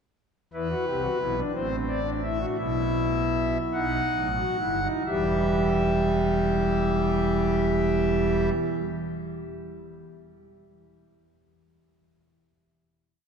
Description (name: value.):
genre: classical, baroque-style 3-part fugue for pipe organ.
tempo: 42-61 BPM (dotted quarters).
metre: 6/8.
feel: straight.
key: E minor.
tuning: A4 = 439 Hz.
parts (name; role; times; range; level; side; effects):
pipe organ, foundations; solo; 0.5-8.5 s; E1 to F#5; -23 LUFS; equal; none.
room: wet church reverb, RT60 3.6 s.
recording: none.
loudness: -23 LUFS.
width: side -6 dB against mid.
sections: 0.5-5.1 exposition; 5.1-10.7 final chord.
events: slowing down 0.5-6.5.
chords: 0.5 Em; 1.5 Am; 2.6 Bsus4; 3.7 B7; 5.1 Em.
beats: | 0.54 1.54 | 2.59 3.74 | 5.06 6.47 | 7.89.